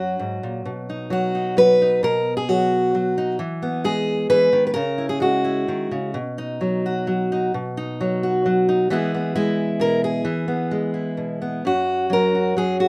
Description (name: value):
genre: folk, solo fingerstyle acoustic guitar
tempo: 131 BPM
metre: 3/4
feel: rubato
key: unclear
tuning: A4 = 441 Hz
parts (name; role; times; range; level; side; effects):
- fingerpicked steel-string acoustic guitar; solo; 0.0-12.9 s; F#2 to B4; -21 LUFS; equal; none
room: light reverb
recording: none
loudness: -21 LUFS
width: mono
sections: 0.7-11.6 A section; 11.6-12.9 B section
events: none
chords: 0.0 F#; 0.7 B; 3.4 E; 4.8 C#madd9; 6.2 B; 8.9 E; 11.6 N.C.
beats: 0.19 | 0.66 1.12 1.58 | 2.04 2.49 2.94 | 3.40 3.85 4.30 | 4.76 5.22 5.68 | 6.15 6.62 7.08 | 7.54 8.00 8.45 | 8.90 9.35 9.80 | 10.25 10.71 11.18 | 11.65 12.11 12.57